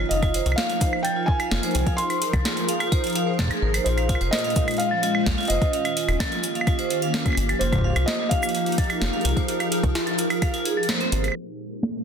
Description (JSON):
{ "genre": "IDM", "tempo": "128 BPM", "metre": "4/4", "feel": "straight", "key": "F minor", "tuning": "A4 = 440 Hz", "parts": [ { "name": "hollow soft pad", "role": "sustained chords", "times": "0.0-12.0 s", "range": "Bb2 to C5", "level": "-28 LUFS", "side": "left 1 dB", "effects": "ensemble chorus" }, { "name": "vibraphone with hard mallets", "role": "arpeggios", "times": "0.0-11.2 s", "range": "F3 to F5", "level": "-28 LUFS", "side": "right 4 dB", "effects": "digital delay" }, { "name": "metallic FM bass", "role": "bass", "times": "0.0-11.3 s", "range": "Eb1 to C2", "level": "-25 LUFS", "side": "equal", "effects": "none" }, { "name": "felt-muted upright piano", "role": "melody", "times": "0.1-10.8 s", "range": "C5 to C6", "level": "-29 LUFS", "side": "left 1 dB", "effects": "ping-pong delay" }, { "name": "booming analog drum machine", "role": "drums", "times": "0.1-12.0 s", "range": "cabasa, claves, hi-hat, snare drum", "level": "-27 LUFS", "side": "right 1 dB", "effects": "none" }, { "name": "electronic kick drum", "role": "drums", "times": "0.2-10.5 s", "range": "none", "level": "-23 LUFS", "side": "equal", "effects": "none" } ], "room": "moderate plate reverb, RT60 1.2 s, digital ambience", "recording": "dense, heavily limited modern master, low-pass filter", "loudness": "-20 LUFS", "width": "side -7 dB against mid", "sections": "0.0-11.4 A section", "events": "kick drops out 10.9-11.4; band accent 10.9", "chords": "0.1 Fm7; 3.9 Bbm9; 5.7 Eb7; 7.6 Fm11; 11.4 Bbm7" }